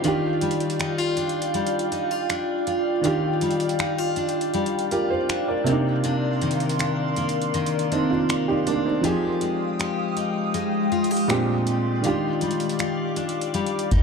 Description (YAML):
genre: contemporary R&B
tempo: 80 BPM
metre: 4/4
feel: straight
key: Eb major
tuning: A4 = 440 Hz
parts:
  - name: felt-muted upright piano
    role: accompaniment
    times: 0.0-14.0 s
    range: Bb2 to D5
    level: -26 LUFS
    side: right 4 dB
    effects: none
  - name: glassy FM pad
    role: sustained chords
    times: 0.0-14.0 s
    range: Ab3 to Eb6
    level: -26 LUFS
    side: left 1 dB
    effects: ensemble chorus, built-in reverb
  - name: picked steel-string acoustic guitar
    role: arpeggios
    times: 0.0-14.0 s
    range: Bb2 to G4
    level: -26 LUFS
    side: left 3 dB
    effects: none
  - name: booming analog drum machine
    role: drums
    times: 0.0-14.0 s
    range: finger snaps, hi-hat, kick drum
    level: -30 LUFS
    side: equal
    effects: none
  - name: warm 808-style bass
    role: bass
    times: 13.9-14.0 s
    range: Eb2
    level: -20 LUFS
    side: equal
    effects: none
room: light reverb, digital ambience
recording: dark, warm production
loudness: -21 LUFS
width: side -5 dB against mid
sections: 0.0-14.0 A section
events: break 0.0-12.0, 12.0-13.5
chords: 0.0 Ebmaj9; 5.7 Cm9; 9.0 Fm9; 11.3 Bb13; 12.0 Ebmaj9